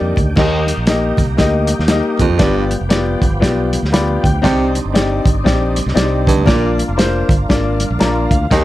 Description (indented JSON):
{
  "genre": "uptempo 1960s-style soul",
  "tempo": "118 BPM",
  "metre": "4/4",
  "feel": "swing 60% on 8ths",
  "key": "Eb major",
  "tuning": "A4 = 438 Hz",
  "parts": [
    { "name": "warm grand piano", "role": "accompaniment", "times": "0.0-8.6 s", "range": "Bb3 to B5", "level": "-18 LUFS", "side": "left 3 dB", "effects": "none" },
    { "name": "overdriven tonewheel organ", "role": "sustained chords", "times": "0.0-8.6 s", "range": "Eb3 to G4", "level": "-25 LUFS", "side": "right 1 dB", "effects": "slow rotary speaker, chorus vibrato" },
    { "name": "fingered electric bass", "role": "bass", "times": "0.0-8.6 s", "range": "F1 to F2", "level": "-19 LUFS", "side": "equal", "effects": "none" },
    { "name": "congas", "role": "percussion", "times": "0.0-8.6 s", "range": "none", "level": "-26 LUFS", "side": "right 3 dB", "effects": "none" },
    { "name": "warm soul drum kit", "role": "drums", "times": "0.2-8.6 s", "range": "crash cymbal, hi-hat, kick drum, snare drum", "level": "-16 LUFS", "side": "equal", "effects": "none" },
    { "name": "warm baritone saxophone", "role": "riff", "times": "0.4-8.6 s", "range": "Eb2 to C3", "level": "-18 LUFS", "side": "right 5 dB", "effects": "none" }
  ],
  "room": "light reverb",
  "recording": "none",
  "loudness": "-12 LUFS",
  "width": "side -15 dB against mid",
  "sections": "0.4-8.6 A section",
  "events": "grand piano fill 3.7-4.4, 7.7-8.5",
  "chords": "0.4 Eb; 2.4 G7; 4.4 Cmadd9; 6.5 Bb"
}